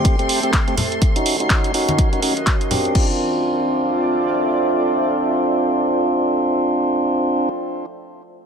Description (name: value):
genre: deep house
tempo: 124 BPM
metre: 4/4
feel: swing 59% on 16ths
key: D minor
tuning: A4 = 442 Hz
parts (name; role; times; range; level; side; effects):
- deep dark ambient pad; sustained chords; 0.0-7.5 s; Eb3 to F5; -26 LUFS; right 1 dB; chorus, built-in reverb, sidechain pumping
- tonewheel organ; stabs; 0.0-7.5 s; A3 to G4; -19 LUFS; right 1 dB; stopped rotary speaker, low-pass filter, digital delay
- electronic kick drum; drums; 0.0-3.1 s; none; -18 LUFS; equal; none
- punchy analog drum machine; drums; 0.0-3.1 s; crash cymbal, handclaps, hi-hat; -23 LUFS; right 1 dB; none
- airy breathy pad; texture; 0.0-7.6 s; C4 to G5; -28 LUFS; right 2 dB; chorus, sidechain pumping
- string machine, violins; texture; 0.0-3.0 s; C6; -30 LUFS; left 1 dB; ensemble chorus, sidechain pumping
- congas; percussion; 0.8-2.8 s; none; -25 LUFS; left 2 dB; sidechain pumping on perc
room: moderate plate reverb, RT60 2.1 s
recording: none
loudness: -16 LUFS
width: side -6 dB against mid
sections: 0.0-3.0 A section; 3.0-6.8 B section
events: none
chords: 0.0 Am7; 1.0 Ebm7; 3.0 Dm7